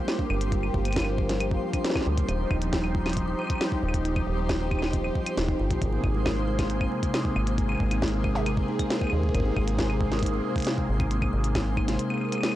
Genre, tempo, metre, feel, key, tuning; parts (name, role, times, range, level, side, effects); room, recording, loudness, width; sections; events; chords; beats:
IDM; 136 BPM; 4/4; straight; A4 = 440 Hz
phased analog pad; sustained chords; 0.0-12.6 s; C3 to Ab4; -31 LUFS; equal; phaser, chorus, vintage 12-bit sampler grit
kalimba; arpeggios; 0.0-12.5 s; F3 to F4; -33 LUFS; right 1 dB; analog delay
twinkling granular texture; texture; 0.0-12.6 s; C4 to C5; -36 LUFS; left 2 dB; built-in reverb
glitchy drum kit; drums; 0.1-12.5 s; claves, hi-hat, snare drum; -31 LUFS; equal; analog delay
electronic kick drum; drums; 0.2-11.9 s; -30 LUFS; equal
deep acid bass; bass; 0.3-12.0 s; Eb1 to Eb2; -28 LUFS; equal
little or no reverb; dry, gritty hardware recording, cassette tape; -24 LUFS; side -14 dB against mid
0.0-12.6 A section
kick drops out 12.0-12.6
0.0 Gm7; 2.3 Ebadd9; 5.8 Abadd9
0.08 | 0.52 0.96 1.40 1.84 | 2.29 2.73 3.17 3.61 | 4.05 4.49 4.93 5.38 | 5.82 6.26 6.70 7.14 | 7.58 8.02 8.46 8.90 | 9.35 9.79 10.23 10.67 | 11.11 11.55 11.99 12.43